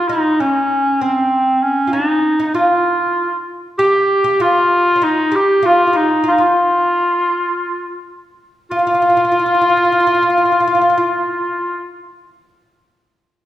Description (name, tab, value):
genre	Turkish makam ensemble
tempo	97 BPM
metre	4/4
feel	straight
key	unclear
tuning	A4 = 440 Hz
part	clear clarinet	melody	0.0-11.9 s	C4 to G4	-14 LUFS	equal	none
part	oud	second line	0.0-11.0 s	C4 to G4	-18 LUFS	equal	none
room	wet recital hall reverb, RT60 1.7 s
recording	recorded in a church or concert hall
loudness	-12 LUFS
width	side -13 dB against mid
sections	0.0-8.7 A section; 8.7-11.2 B section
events	none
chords	none